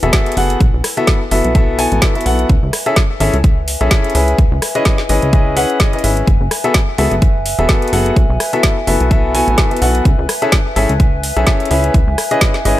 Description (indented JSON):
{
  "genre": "piano house",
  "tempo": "127 BPM",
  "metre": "4/4",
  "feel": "swing 55% on 16ths",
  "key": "F# minor",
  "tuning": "A4 = 439 Hz",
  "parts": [
    { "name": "warm grand piano", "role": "riff", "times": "0.0-12.8 s", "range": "B3 to G#5", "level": "-17 LUFS", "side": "left 2 dB", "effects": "sidechain pumping, ping-pong delay" },
    { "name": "plucky analog bass", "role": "bass", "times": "0.0-12.8 s", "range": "E1 to C#2", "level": "-17 LUFS", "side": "equal", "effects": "sidechain pumping" },
    { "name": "garage drum kit", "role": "drums", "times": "0.0-12.8 s", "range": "hi-hat, rim click, snare drum", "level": "-19 LUFS", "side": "equal", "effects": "none" },
    { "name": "warbly tape-like pad", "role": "texture", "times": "0.0-12.8 s", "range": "E4 to G#5", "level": "-23 LUFS", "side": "left 1 dB", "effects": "chorus, built-in reverb, sidechain pumping" },
    { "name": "electronic kick drum", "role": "drums", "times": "0.1-12.5 s", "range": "none", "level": "-13 LUFS", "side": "equal", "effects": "none" }
  ],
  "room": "little or no reverb",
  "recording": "none",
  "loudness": "-11 LUFS",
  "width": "side -14 dB against mid",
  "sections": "0.0-12.8 A section",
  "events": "none",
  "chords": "0.0 F#m11; 0.6 B7sus4; 2.5 Amaj7; 4.1 C#m9; 6.3 F#m11; 8.2 B7sus4; 10.1 Amaj7; 11.7 C#m9",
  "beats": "0.13 | 0.61 1.08 1.55 2.02 | 2.50 2.97 3.44 3.91 | 4.38 4.86 5.33 5.80 | 6.28 6.75 7.22 7.69 | 8.16 8.64 9.11 9.58 | 10.05 10.53 11.00 11.47 | 11.94 12.42"
}